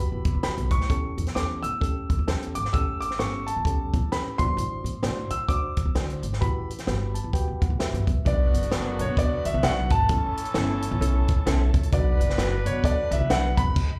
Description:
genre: uptempo 1960s-style soul.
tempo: 130 BPM.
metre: 4/4.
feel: swing 60% on 8ths.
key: unclear.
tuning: A4 = 440 Hz.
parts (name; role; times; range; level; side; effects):
clear grand piano; melody; 0.0-14.0 s; C#5 to E6; -32 LUFS; equal; plate reverb, slapback echo.
reed electric piano; accompaniment; 0.0-13.6 s; C#4 to A5; -37 LUFS; equal; fast tremolo, plate reverb, slapback echo.
upright bass; bass; 0.1-13.7 s; F#1 to B2; -29 LUFS; equal; none.
compact cocktail drum kit; drums; 0.2-13.9 s; crash cymbal, hi-hat, kick drum, snare drum; -29 LUFS; equal; none.
tonewheel organ; sustained chords; 8.2-13.8 s; D3 to A4; -41 LUFS; equal; fast rotary speaker, plate reverb.
warm horn section; second line; 8.3-13.6 s; D3 to B4; -38 LUFS; equal; plate reverb, slapback echo.
electric guitar through a small old amp; stabs; 8.7-13.5 s; B3 to B4; -36 LUFS; equal; ensemble chorus, plate reverb, slapback echo.
room: light reverb.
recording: live gig heard through the venue's PA, club reverb.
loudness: -25 LUFS.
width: mono.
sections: 0.0-8.3 A section; 8.3-14.0 B section.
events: reed electric piano fill 6.9-8.3; stop 13.8.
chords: 0.0 Gmaj7; 0.9 A7; 4.3 D7; 6.4 Gmaj7; 8.3 Bm; 10.1 A; 11.9 Bm.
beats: 0.43 | 0.89 1.35 1.81 2.27 | 2.73 3.20 3.66 4.12 | 4.58 5.04 5.50 5.96 | 6.42 6.88 7.34 7.80 | 8.26 8.72 9.18 9.64 | 10.10 10.56 11.02 11.47 | 11.93 12.39 12.85 13.31 | 13.77.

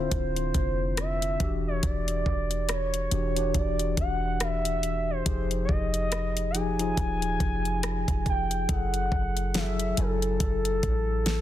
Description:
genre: contemporary R&B.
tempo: 70 BPM.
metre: 4/4.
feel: swing 58% on 16ths.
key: unclear.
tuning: A4 = 440 Hz.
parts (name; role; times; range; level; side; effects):
gliding portamento lead; melody; 0.0-11.4 s; A4 to Ab5; -30 LUFS; equal; chorus, phaser, ping-pong delay.
mellow tine electric piano; accompaniment; 0.0-11.4 s; D3 to G#5; -32 LUFS; left 3 dB; fast stereo tremolo.
clean 808-style bass; bass; 0.0-11.4 s; D1 to A1; -30 LUFS; equal; none.
smooth R&B drum kit; drums; 0.1-11.4 s; hi-hat, kick drum, rim click, snare drum; -30 LUFS; equal; overdrive.
room: little or no reverb.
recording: dense, heavily limited modern master.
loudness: -25 LUFS.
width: side -12 dB against mid.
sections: 0.0-8.7 A section; 8.7-11.4 B section.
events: none.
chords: 0.0 Dm9; 1.4 Em9; 5.3 Fm9; 8.7 F#m9.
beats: 0.12 0.98 | 1.83 2.69 3.55 4.40 | 5.26 6.12 6.98 7.83 | 8.69 9.55 10.40 11.26.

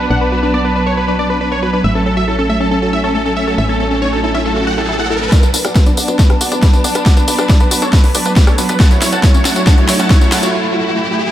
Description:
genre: uplifting trance.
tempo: 138 BPM.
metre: 4/4.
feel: straight.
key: B minor.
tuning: A4 = 441 Hz.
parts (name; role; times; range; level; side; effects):
dense compressed supersaw; melody; 0.0-10.5 s; A4 to A5; -19 LUFS; right 1 dB; sidechain pumping, low-pass filter, diffuse ambient delay.
dark chamber string section; sustained chords; 0.0-11.3 s; F#3 to E4; -18 LUFS; right 1 dB; sidechain pumping.
wide unison pluck; arpeggios; 0.0-10.5 s; A3 to B4; -22 LUFS; left 2 dB; sidechain pumping, analog delay.
tight sequencer bass; bass; 0.0-10.5 s; F#1 to F#2; -22 LUFS; equal; sidechain pumping, high-pass filter.
riser; sound effects; 3.3-11.3 s; none; -24 LUFS; right 1 dB; none.
big-room dance drum kit; drums; 5.3-10.5 s; hi-hat, rim click, snare drum, tambourine; -18 LUFS; equal; high-pass filter on snare, sidechain pumping on hats, high-pass filter on hats, sidechain pumping on perc, high-pass filter on perc, high-pass filter on room.
electronic kick drum; drums; 5.3-10.2 s; none; -9 LUFS; equal; none.
room: moderate plate reverb, RT60 1.9 s, digital ambience.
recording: dreamy mix soaked in reverb.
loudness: -10 LUFS.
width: side -12 dB against mid.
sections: 0.0-5.3 A section; 5.3-11.3 B section.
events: filter sweep on synth pluck 0.0-5.3; riser 3.3-5.3, 5.3-11.3; build-up 5.3-11.3; drum fill 5.3-10.5; filter sweep on supersaw synth 5.3-11.3; break 10.5-11.3.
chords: 0.0 Bm; 1.8 A6; 5.3 Bm; 8.8 F#m7.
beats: | 0.10 0.54 0.97 1.41 | 1.84 2.28 2.71 3.15 | 3.58 4.02 4.45 4.89 | 5.32 5.76 6.19 6.62 | 7.06 7.50 7.93 8.36 | 8.80 9.23 9.67 10.10 | 10.54 10.97.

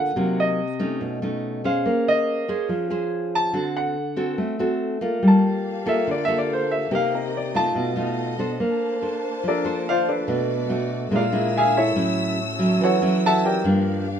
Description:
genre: bossa nova.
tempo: 142 BPM.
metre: 4/4.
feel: straight.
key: unclear.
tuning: A4 = 438 Hz.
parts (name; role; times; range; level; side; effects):
warm grand piano; melody; 0.0-14.0 s; D4 to A5; -23 LUFS; left 1 dB; none.
nylon-string guitar; accompaniment; 0.0-14.2 s; G2 to C5; -22 LUFS; equal; none.
warm symphonic string section; sustained chords; 5.2-14.2 s; Bb3 to E6; -32 LUFS; left 1 dB; none.
room: light reverb.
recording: minimal, uncompressed stereo recording.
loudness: -20 LUFS.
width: side -8 dB against mid.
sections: 0.0-14.2 A section.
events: grand piano solo 0.0-14.2.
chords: 0.2 Cm7b5; 1.0 B9; 1.9 Bbm9; 3.5 D7; 5.2 Gm9; 6.9 Cm7; 7.8 B7#11; 8.6 Bbmaj9; 10.3 Bm7; 11.1 Bb7#11; 12.0 A6; 13.6 Gm7.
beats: | 0.16 0.58 1.01 1.43 | 1.85 2.27 2.69 3.12 | 3.54 3.96 4.38 4.80 | 5.22 5.65 6.07 6.49 | 6.91 7.33 7.75 8.17 | 8.59 9.01 9.44 9.86 | 10.28 10.70 11.12 11.54 | 11.96 12.38 12.80 13.22 | 13.64 14.06.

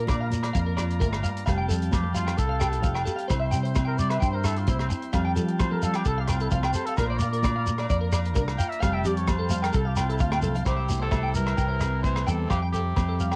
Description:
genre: highlife guitar band.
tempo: 130 BPM.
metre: 4/4.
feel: straight.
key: C mixolydian.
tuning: A4 = 439 Hz.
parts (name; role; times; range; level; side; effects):
nylon-string guitar; accompaniment; 0.0-13.4 s; F2 to G4; -36 LUFS; equal; cassette tape.
combo organ; sustained chords; 0.0-10.6 s; D5 to C6; -41 LUFS; equal; cassette tape.
clean electric guitar; arpeggios; 0.0-13.4 s; G4 to G5; -34 LUFS; equal; analog chorus, cassette tape, analog delay.
fingered electric bass; bass; 0.0-13.4 s; F1 to F3; -30 LUFS; equal; none.
warm soul drum kit; drums; 0.1-13.4 s; hi-hat, kick drum, rim click; -31 LUFS; equal; cassette tape.
agogo bells; percussion; 0.1-13.4 s; none; -40 LUFS; equal; none.
congas; percussion; 0.1-13.3 s; none; -39 LUFS; equal; none.
shekere; percussion; 0.1-13.3 s; none; -33 LUFS; equal; none.
breathy trumpet; melody; 1.9-13.4 s; C4 to G5; -34 LUFS; equal; cassette tape.
raspy tenor saxophone; second line; 10.7-13.4 s; C3 to E3; -39 LUFS; equal; cassette tape.
room: studio ambience.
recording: home recording on cassette.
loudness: -25 LUFS.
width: mono.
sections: 0.0-10.7 A section; 10.7-13.4 B section.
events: trumpet solo 0.0-10.7; drum fill 10.3-10.7.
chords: 0.0 Bb; 1.5 Fadd9; 3.3 C; 5.1 Fadd9; 7.0 Bb; 8.8 Fadd9; 10.7 C; 12.5 Fadd9.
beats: 0.08 0.54 1.00 | 1.46 1.92 2.38 2.84 | 3.30 3.76 4.21 4.67 | 5.13 5.59 6.05 6.51 | 6.97 7.43 7.89 8.36 | 8.81 9.28 9.74 10.20 | 10.66 11.12 11.58 12.04 | 12.50 12.96.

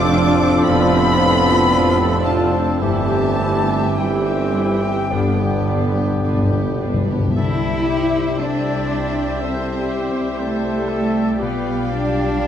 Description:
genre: classical, slow romantic movement for symphony orchestra.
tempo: 51-61 BPM.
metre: 4/4.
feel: rubato.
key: C major.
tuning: A4 = 441 Hz.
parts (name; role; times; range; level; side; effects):
rich chamber violin section; melody; 0.0-12.5 s; A4 to D6; -28 LUFS; left 3 dB; none.
bright clarinet; second line; 0.0-12.5 s; B3 to F5; -29 LUFS; left 1 dB; none.
bright silver concert flute; second line; 0.0-12.5 s; A4 to D6; -27 LUFS; left 2 dB; none.
mellow oboe; second line; 0.0-12.5 s; F4 to C5; -30 LUFS; left 1 dB; none.
warm studio violin section; second line; 0.0-12.5 s; E4 to G5; -32 LUFS; left 1 dB; none.
rich chamber viola section; accompaniment; 0.0-12.5 s; G3 to D5; -27 LUFS; equal; none.
warm bassoon; accompaniment; 0.0-12.5 s; D3 to G3; -26 LUFS; right 1 dB; none.
mellow French horn section; sustained chords; 0.0-12.5 s; G3 to F4; -26 LUFS; left 3 dB; none.
warm trombone section; sustained chords; 0.0-7.0 s; G2 to G3; -25 LUFS; right 3 dB; none.
concert harp; arpeggios; 0.0-12.5 s; F2 to F6; -27 LUFS; left 9 dB; none.
clear tuba; bass; 0.0-7.2 s; F1 to G1; -26 LUFS; right 3 dB; none.
dark chamber cello section; bass; 0.0-12.5 s; G3 to E4; -23 LUFS; equal; none.
rich studio double bass section; bass; 0.0-12.5 s; F1 to C2; -25 LUFS; right 4 dB; none.
timpani; percussion; 5.1-8.9 s; G2 to C3; -22 LUFS; left 1 dB; none.
room: moderate scoring stage reverb, RT60 1.9 s.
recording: dark, warm production.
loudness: -16 LUFS.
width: side -9 dB against mid.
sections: 0.0-7.4 A section; 7.4-12.5 B section.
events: timpani fill 5.1-7.4.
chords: 0.0 Dm7/F; 2.8 C/G; 5.1 G; 7.4 C; 11.4 G7/B.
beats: 0.67 1.70 | 2.81 3.98 5.11 6.22 | 7.37 8.40 9.41 10.40 | 11.41 12.41.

